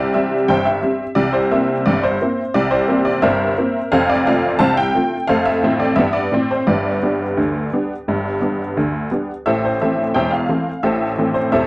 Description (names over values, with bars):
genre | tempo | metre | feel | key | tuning
ragtime piano | 87 BPM | 2/4 | straight | C major | A4 = 444 Hz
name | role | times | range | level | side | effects
honky-tonk upright piano | solo | 0.0-11.7 s | E1 to A5 | -15 LUFS | equal | none
room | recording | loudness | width
light reverb | dry, close 1970s-style studio recording | -15 LUFS | side -24 dB against mid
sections
0.0-11.7 A section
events
none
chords
0.0 C; 1.2 C7; 3.9 F; 6.7 G; 9.5 Am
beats
0.50 | 1.19 1.87 | 2.56 3.25 | 3.93 4.62 | 5.30 5.99 | 6.68 7.38 | 8.07 8.76 | 9.45 10.14 | 10.83 11.52